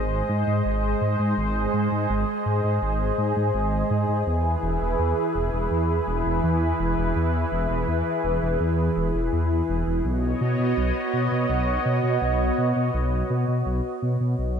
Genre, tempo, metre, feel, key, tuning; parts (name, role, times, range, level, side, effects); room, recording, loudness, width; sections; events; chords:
synthwave; 83 BPM; 4/4; straight; A4 = 440 Hz
lush unison pad; sustained chords; 0.0-14.6 s; E3 to D#5; -24 LUFS; right 1 dB; chorus, phaser
dark detuned saw bass; bass; 0.0-14.6 s; E1 to B2; -24 LUFS; equal
moderate lush hall reverb, RT60 2.6 s; bright 1980s-style digital production; -21 LUFS; side -7 dB against mid
0.0-14.6 A section
0.0 G#; 4.3 E; 10.1 Badd9